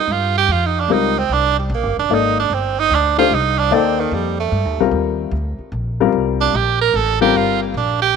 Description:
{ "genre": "jazz", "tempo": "149 BPM", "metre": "3/4", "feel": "swing 67% on 8ths", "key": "C dorian", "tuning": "A4 = 440 Hz", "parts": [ { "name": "edgy tenor saxophone", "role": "second line", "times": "0.0-8.2 s", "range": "Eb3 to Bb4", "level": "-17 LUFS", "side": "right 10 dB", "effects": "none" }, { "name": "upright bass", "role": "bass", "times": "0.1-8.1 s", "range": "Eb1 to G2", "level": "-22 LUFS", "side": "equal", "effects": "none" }, { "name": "dark baby grand piano", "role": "accompaniment", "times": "0.9-7.7 s", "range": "G3 to D5", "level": "-18 LUFS", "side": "left 12 dB", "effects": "none" } ], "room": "light reverb, studio ambience", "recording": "1960s-style stereo with parts hard left and right", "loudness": "-15 LUFS", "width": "side -6 dB against mid", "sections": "0.0-8.2 A section", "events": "tenor saxophone solo 0.0-8.2", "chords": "0.0 Cm11" }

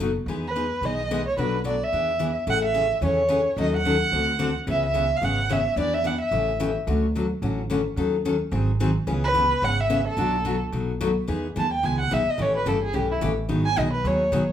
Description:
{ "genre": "acoustic string swing (jazz manouche)", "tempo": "218 BPM", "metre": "4/4", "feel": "swing 56% on 8ths", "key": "A major, E major from 11.3 s", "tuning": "A4 = 440 Hz", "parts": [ { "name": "picked steel-string acoustic guitar", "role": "accompaniment", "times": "0.0-14.4 s", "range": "B2 to A4", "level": "-26 LUFS", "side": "left 3 dB", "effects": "none" }, { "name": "upright bass", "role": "bass", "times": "0.0-14.5 s", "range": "F#1 to E2", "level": "-28 LUFS", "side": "right 1 dB", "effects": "none" }, { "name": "warm violin", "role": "melody", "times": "0.5-6.7, 9.2-14.5 s", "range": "E4 to A5", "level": "-24 LUFS", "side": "right 1 dB", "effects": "none" } ], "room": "moderate large studio reverb, RT60 0.8 s", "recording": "band playing live in one room", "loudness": "-21 LUFS", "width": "side -10 dB against mid", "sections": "0.0-2.5 A section; 2.5-11.3 B section; 11.3-14.5 C section", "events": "violin solo 11.3-14.5", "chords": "0.3 Emaj7; 1.4 Bm7; 1.9 E7; 2.5 Amaj7; 3.6 D#m7b5; 4.1 D7; 4.7 C#m7; 5.8 Em7; 6.3 A7; 6.9 Dmaj7; 8.0 D#m7b5; 8.5 G#7; 9.1 C#m7; 10.2 Bm7; 10.7 B7; 11.3 Emaj7; 12.4 A9; 13.5 G#m7" }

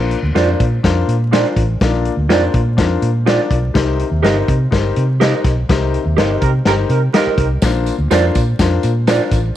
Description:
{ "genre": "uptempo 1960s-style soul", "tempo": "124 BPM", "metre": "4/4", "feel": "straight", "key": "Bb major", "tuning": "A4 = 441 Hz", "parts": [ { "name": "warm concert grand piano", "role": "accompaniment", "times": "0.0-9.4 s", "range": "Bb2 to D5", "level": "-20 LUFS", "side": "left 6 dB", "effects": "none" }, { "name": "vintage muted fingered electric bass", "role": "bass", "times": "0.0-9.5 s", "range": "G1 to C3", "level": "-17 LUFS", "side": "equal", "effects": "none" }, { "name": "vintage drum kit", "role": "drums", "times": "0.1-9.4 s", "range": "hi-hat, kick drum, snare drum", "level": "-18 LUFS", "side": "left 1 dB", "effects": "vintage 12-bit sampler grit" }, { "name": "electric guitar through a small old amp", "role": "stabs", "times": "0.4-9.2 s", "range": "F4 to Eb5", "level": "-19 LUFS", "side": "right 9 dB", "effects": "slapback echo" }, { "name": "warm horn section", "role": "second line", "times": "6.4-7.5 s", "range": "Eb4 to Bb4", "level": "-20 LUFS", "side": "right 12 dB", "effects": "none" }, { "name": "tambourine", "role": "percussion", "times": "7.6-9.4 s", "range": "none", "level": "-33 LUFS", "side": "right 13 dB", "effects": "none" } ], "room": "light reverb, small room ambience", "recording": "1960s-style stereo with parts hard left and right, vinyl crackle", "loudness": "-13 LUFS", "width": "side -12 dB against mid", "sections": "0.0-9.6 A section", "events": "band accent 5.7-7.6", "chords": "0.0 Bbadd9; 3.8 Cm7; 7.6 Bbadd9" }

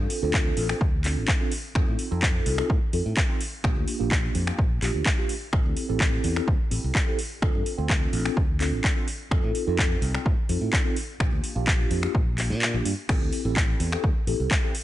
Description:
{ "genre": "filtered disco house", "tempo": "127 BPM", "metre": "4/4", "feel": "straight", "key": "D minor", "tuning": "A4 = 440 Hz", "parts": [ { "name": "mellow tine electric piano", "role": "accompaniment", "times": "0.0-14.7 s", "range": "Bb3 to A4", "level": "-30 LUFS", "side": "equal", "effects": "medium stereo tremolo, phaser, sidechain pumping" }, { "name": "modern bright fingered electric bass", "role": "bass", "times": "0.0-14.5 s", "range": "A1 to Bb2", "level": "-28 LUFS", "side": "equal", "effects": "sidechain pumping" }, { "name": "house drum kit", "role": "drums", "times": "0.1-14.8 s", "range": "crash cymbal, finger snaps, handclaps, hi-hat", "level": "-29 LUFS", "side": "equal", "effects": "overdrive" }, { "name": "electronic kick drum", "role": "drums", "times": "0.3-14.6 s", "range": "none", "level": "-24 LUFS", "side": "equal", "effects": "overdrive" } ], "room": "little or no reverb", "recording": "nothing above 10.8 kHz", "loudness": "-22 LUFS", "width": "side -14 dB against mid", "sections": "0.0-14.8 A section", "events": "kick drops out 12.6-13.1", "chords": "0.0 Dm7; 1.5 F7; 3.4 Bb6; 5.5 Am7; 7.2 Dm7; 9.1 F7; 11.0 Bb6; 13.1 Am7" }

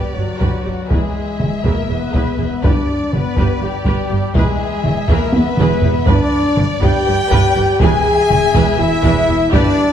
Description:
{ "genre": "cinematic, epic orchestral film score", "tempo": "244 BPM (eighths)", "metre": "7/8", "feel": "straight", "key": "unclear", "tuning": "A4 = 436 Hz", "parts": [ { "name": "warm symphonic violin section", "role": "melody", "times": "0.0-9.9 s", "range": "D5 to E5", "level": "-27 LUFS", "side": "left 6 dB", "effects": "none" }, { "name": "warm symphonic violin section", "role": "second line", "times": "0.0-9.9 s", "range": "F#4 to G#5", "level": "-25 LUFS", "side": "left 4 dB", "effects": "none" }, { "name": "warm symphonic viola section", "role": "accompaniment", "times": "0.0-9.8 s", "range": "D4 to B4", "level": "-25 LUFS", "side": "right 2 dB", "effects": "none" }, { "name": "dark French horn section", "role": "sustained chords", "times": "0.0-9.9 s", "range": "F#3 to G#4", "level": "-19 LUFS", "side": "left 2 dB", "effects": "none" }, { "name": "clear trumpet section", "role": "stabs", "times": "0.0-9.9 s", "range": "F#4 to G#5", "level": "-24 LUFS", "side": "left 1 dB", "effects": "none" }, { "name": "rich symphonic cello section", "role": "bass", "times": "0.2-9.6 s", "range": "E2 to G2", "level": "-22 LUFS", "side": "right 4 dB", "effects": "none" }, { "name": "rich symphonic double bass section", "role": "bass", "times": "0.2-9.6 s", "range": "E1 to G1", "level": "-22 LUFS", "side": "right 4 dB", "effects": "none" }, { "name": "solo taiko drums", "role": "drums", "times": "0.4-9.9 s", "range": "none", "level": "-18 LUFS", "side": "equal", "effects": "none" } ], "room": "moderate concert hall reverb, RT60 2.2 s", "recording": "dark, warm production", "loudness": "-13 LUFS", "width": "side -9 dB against mid", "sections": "0.0-9.9 A section", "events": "drum fill 5.3-6.1", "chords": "0.0 G; 0.9 E; 2.6 G; 4.4 E; 6.1 G; 7.8 E" }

